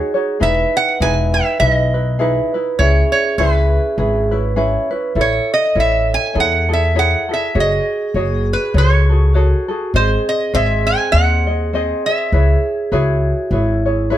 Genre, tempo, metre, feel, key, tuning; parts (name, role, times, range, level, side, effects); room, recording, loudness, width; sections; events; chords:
Hawaiian; 101 BPM; 4/4; swing 56% on 8ths; C# minor; A4 = 441 Hz
vibraphone with medium mallets; second line; 0.0-14.2 s; E4 to C#5; -23 LUFS; right 3 dB
tenor ukulele; accompaniment; 0.0-14.2 s; B#3 to D#5; -21 LUFS; left 1 dB
lap resonator guitar; melody; 0.4-14.1 s; B4 to G#5; -18 LUFS; right 2 dB; slapback echo
upright bass; bass; 0.4-14.1 s; E1 to E2; -16 LUFS; equal
light reverb; close, detailed microphones; -14 LUFS; side -12 dB against mid
0.0-14.2 A section
0.4 Emaj7; 2.8 C#m7; 5.2 Amaj7; 7.6 F#madd9; 9.9 G#; 12.3 C#m7